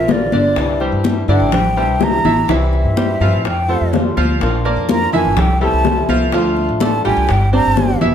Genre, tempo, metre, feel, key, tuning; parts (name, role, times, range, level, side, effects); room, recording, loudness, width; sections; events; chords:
latin, Cuban son and guajira; 125 BPM; 4/4; straight; A4 = 437 Hz
breathy concert flute; melody; 0.0-8.0 s; D5 to Bb5; -19 LUFS; right 2 dB
fingerpicked swing-style acoustic guitar; accompaniment; 0.0-8.1 s; C3 to G4; -22 LUFS; left 2 dB
bright grand piano; arpeggios; 0.0-8.1 s; D3 to G5; -19 LUFS; equal
upright bass; bass; 0.0-8.1 s; E1 to G2; -18 LUFS; equal
bongos; percussion; 0.1-8.1 s; -22 LUFS; left 6 dB
congas; percussion; 0.1-8.1 s; -21 LUFS; equal
moderate studio reverb, RT60 0.6 s; -13 LUFS; side -8 dB against mid
0.0-8.1 A section
flute solo 0.0-8.1
0.0 Bbadd9; 0.6 Cadd9; 2.5 C; 3.4 Fadd9; 4.4 Bb; 5.4 C6; 6.3 Dm; 7.3 Gsus4